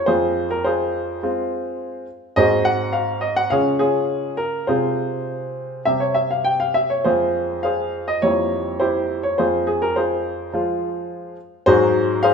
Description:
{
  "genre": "classical-period piano sonatina",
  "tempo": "104 BPM",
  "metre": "4/4",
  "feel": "straight",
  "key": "F minor",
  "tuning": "A4 = 440 Hz",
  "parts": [
    { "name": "clear baby grand piano", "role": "solo", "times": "0.0-12.3 s", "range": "F2 to G5", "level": "-18 LUFS", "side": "equal", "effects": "none" }
  ],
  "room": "moderate recital hall reverb, RT60 1.8 s",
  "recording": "minimal, uncompressed stereo recording",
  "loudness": "-18 LUFS",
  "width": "side -6 dB against mid",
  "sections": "0.0-12.3 A section",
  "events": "none",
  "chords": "0.1 Fm; 2.4 Ab7; 3.5 Db; 4.7 Fm/C; 5.9 C5; 7.1 Fm; 8.2 C7b9; 9.4 Fm; 11.7 Ab7",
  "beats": "| 0.08 0.65 1.23 1.80 | 2.37 2.94 3.52 4.09 | 4.68 5.28 5.87 6.46 | 7.06 7.64 8.23 8.81 | 9.38 9.96 10.53 11.10 | 11.67 12.24"
}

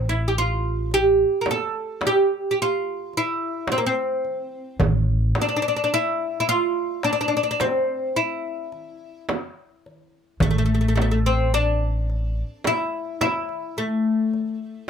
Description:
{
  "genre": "Turkish makam ensemble",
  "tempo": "107 BPM (eighths)",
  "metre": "10/8",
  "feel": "straight",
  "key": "A minor",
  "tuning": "A4 = 440 Hz",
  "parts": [
    { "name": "oud", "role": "melody", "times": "0.0-14.9 s", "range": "A3 to Bb4", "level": "-22 LUFS", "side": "equal", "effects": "none" },
    { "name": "upright bass", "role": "bass", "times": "0.0-12.4 s", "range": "A1", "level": "-22 LUFS", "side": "equal", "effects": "none" },
    { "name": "darbuka", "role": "percussion", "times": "0.9-14.5 s", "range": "none", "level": "-27 LUFS", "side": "equal", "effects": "none" },
    { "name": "frame drum", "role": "percussion", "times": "1.5-13.5 s", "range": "none", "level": "-28 LUFS", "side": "right 4 dB", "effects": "none" }
  ],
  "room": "little or no reverb",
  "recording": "close, detailed microphones",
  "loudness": "-20 LUFS",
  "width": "side -7 dB against mid",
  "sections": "0.0-14.9 A section",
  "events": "none",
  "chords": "none",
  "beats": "0.35 0.91 1.47 2.02 2.58 3.14 3.70 4.26 | 4.82 5.38 5.93 6.49 7.05 7.61 8.17 8.73 9.29 9.85 | 10.41 10.97 11.53 12.09 12.64 13.20 13.76 14.32 14.88"
}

